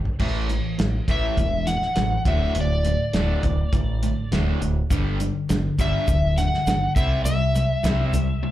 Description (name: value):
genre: classic rock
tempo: 102 BPM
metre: 4/4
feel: straight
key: D mixolydian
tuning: A4 = 440 Hz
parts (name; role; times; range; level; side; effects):
- growling fingered electric bass; bass; 0.0-8.3 s; D1 to C2; -23 LUFS; equal; overdrive
- cloth-damped thuddy drum kit; drums; 0.1-8.3 s; crash cymbal, hi-hat, kick drum, snare drum, toms; -26 LUFS; equal; none
- crunchy overdriven guitar; riff; 0.2-8.5 s; D2 to C4; -29 LUFS; right 7 dB; slapback echo
- overdriven electric guitar; riff; 0.2-8.5 s; D2 to C4; -29 LUFS; left 8 dB; slapback echo
- overdriven slide guitar; melody; 1.1-8.5 s; D5 to F#5; -26 LUFS; left 1 dB; plate reverb, analog delay
- egg shaker; percussion; 4.9-8.3 s; none; -41 LUFS; left 3 dB; none
room: light reverb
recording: live gig heard through the venue's PA, club reverb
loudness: -20 LUFS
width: side -14 dB against mid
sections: 0.2-8.5 A section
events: drum fill 0.0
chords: 0.2 A5; 2.3 D5; 4.9 G5; 7.0 C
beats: | 0.20 0.79 1.38 1.97 | 2.56 3.15 3.73 4.32 | 4.91 5.50 6.08 6.67 | 7.25 7.84 8.42